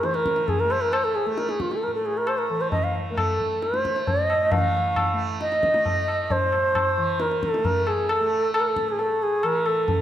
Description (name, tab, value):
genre	indian classical, Hindustani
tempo	134 BPM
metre	4/4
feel	straight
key	A raga todi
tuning	A4 = 440 Hz
part	bansuri	melody	0.0-10.0 s	F4 to F5	-22 LUFS	equal	none
part	tanpura	drone	0.0-10.0 s	A2 to A3	-32 LUFS	right 1 dB	none
part	tabla	percussion	0.0-10.0 s	none	-26 LUFS	left 1 dB	none
room	wet scoring stage reverb, RT60 1.7 s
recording	none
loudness	-21 LUFS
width	side -11 dB against mid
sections	0.0-4.5 A section; 4.5-10.0 B section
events	none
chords	none